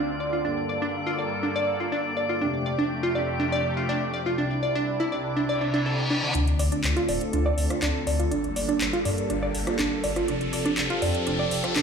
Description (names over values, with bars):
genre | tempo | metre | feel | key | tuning
progressive house | 122 BPM | 4/4 | straight | D minor | A4 = 440 Hz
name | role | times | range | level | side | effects
filtered supersaw swell | sustained chords | 0.0-11.8 s | C2 to A4 | -30 LUFS | equal | low-pass filter
drifting glass-harmonics texture | texture | 0.0-11.8 s | A4 to D6 | -35 LUFS | right 1 dB | chorus, built-in reverb
glassy wavetable pluck | arpeggios | 0.2-11.8 s | D3 to D5 | -26 LUFS | right 1 dB | chorus, cassette tape, digital delay
reverse cymbal and riser | sound effects | 5.6-11.8 s | none | -33 LUFS | left 1 dB | none
saturated sub bass | bass | 6.3-11.8 s | D1 to G2 | -28 LUFS | left 1 dB | none
house drum kit | drums | 6.3-11.8 s | handclaps, hi-hat, rim click | -31 LUFS | left 1 dB | overdrive
room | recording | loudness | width
moderate lush hall reverb, RT60 1.6 s, digital ambience | played on a big sound system in a bare room, large studio reverb | -23 LUFS | side -6 dB against mid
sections
0.0-6.3 A section; 6.3-11.8 B section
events
reverse cymbal 5.6-6.3; build-up 6.3-11.8; riser 6.3-11.8; filter sweep on synth arpeggio sound 6.3-11.8; filter sweep on supersaw synth 6.3-11.8; filter sweep 6.3-11.8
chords
0.4 Gmadd9; 2.4 Fadd9; 4.4 Cadd9; 6.3 Dm7; 8.3 Gmadd9; 10.3 Fadd9